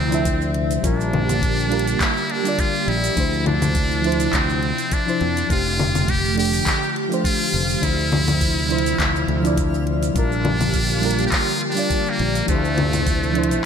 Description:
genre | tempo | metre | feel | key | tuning
sunset chillout | 103 BPM | 4/4 | swing 55% on 16ths | unclear | A4 = 437 Hz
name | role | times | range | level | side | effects
trumpet with metal mute | melody | 0.0-13.7 s | A3 to G4 | -23 LUFS | equal | digital delay
mellow FM electric piano | accompaniment | 0.0-13.7 s | F3 to E5 | -25 LUFS | moving between left 7 dB and right 9 dB | chorus, auto-pan, ping-pong delay
airy breathy pad | sustained chords | 0.0-13.7 s | C3 to G4 | -26 LUFS | equal | chorus
fretless electric bass | bass | 0.0-13.6 s | F1 to F2 | -23 LUFS | equal | none
smooth R&B drum kit | drums | 0.1-13.6 s | congas, handclaps, hi-hat, shaker | -26 LUFS | left 2 dB | gated reverb
electronic kick drum | drums | 0.3-13.2 s | none | -23 LUFS | equal | none
twinkling granular texture | texture | 6.3-13.7 s | F3 to F6 | -32 LUFS | left 1 dB | built-in reverb
room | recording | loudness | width
moderate plate reverb, RT60 2.4 s | bright 1980s-style digital production | -17 LUFS | side -7 dB against mid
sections
0.0-13.7 A section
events
none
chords
0.0 Dm9; 0.8 Bb6; 3.2 Dm9; 5.5 F69; 7.8 Dm9; 10.2 Bb6; 12.5 Dm9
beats
0.25 | 0.83 1.42 2.00 2.58 | 3.17 3.75 4.33 4.91 | 5.50 6.08 6.66 7.24 | 7.83 8.41 8.99 9.57 | 10.16 10.74 11.32 11.90 | 12.49 13.07 13.65

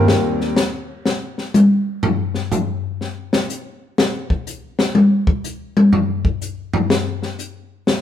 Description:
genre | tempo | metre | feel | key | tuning
modal jazz | 123 BPM | 4/4 | swing 66% on 8ths | Eb major | A4 = 439 Hz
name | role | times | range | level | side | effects
warm upright piano | accompaniment | 0.0-0.6 s | Eb2 to Bb4 | -19 LUFS | left 1 dB | none
open jazz drum kit | drums | 0.1-8.0 s | hi-hat, kick drum, snare drum, toms | -16 LUFS | left 2 dB | none
room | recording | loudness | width
moderate large studio reverb, RT60 1.2 s | band playing live in one room | -17 LUFS | side -10 dB against mid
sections
0.1-8.0 A section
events
drum solo 0.1-8.0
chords
0.1 Ebadd9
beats
| 0.09 0.58 1.06 1.55 | 2.04 2.52 3.01 3.50 | 3.98 4.47 4.96 5.44 | 5.93 6.42 6.90 7.39 | 7.87

